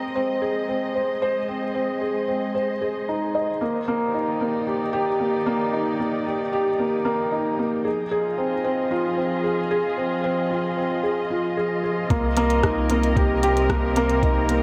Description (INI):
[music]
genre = piano and strings electronica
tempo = 113 BPM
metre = 4/4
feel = straight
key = C minor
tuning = A4 = 441 Hz
[part]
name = muted chamber string section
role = sustained chords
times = 0.0-14.6 s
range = C3 to Eb5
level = -30 LUFS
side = equal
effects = sidechain pumping, shimmer reverb
[part]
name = felt-muted upright piano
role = riff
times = 0.0-14.6 s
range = Bb3 to Eb5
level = -25 LUFS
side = equal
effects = delay, shimmer reverb
[part]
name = warm sub bass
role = bass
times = 12.1-14.6 s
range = C2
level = -27 LUFS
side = equal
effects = sidechain pumping
[part]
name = electronic kick drum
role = drums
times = 12.1-14.3 s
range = none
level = -26 LUFS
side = equal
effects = overdrive, small room ambience
[part]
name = minimal click drum kit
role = drums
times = 12.1-14.6 s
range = hi-hat, rim click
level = -31 LUFS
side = equal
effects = low-pass filter on hats, small room ambience, low-pass filter on snare
[sound]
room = moderate echo chamber reverb, RT60 2.3 s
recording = none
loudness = -23 LUFS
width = mono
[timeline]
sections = 0.0-12.1 A section; 12.1-14.6 B section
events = drop 12.1-14.6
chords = 0.0 Ab; 3.6 Ebmaj7; 7.9 Fm7; 12.1 Cm7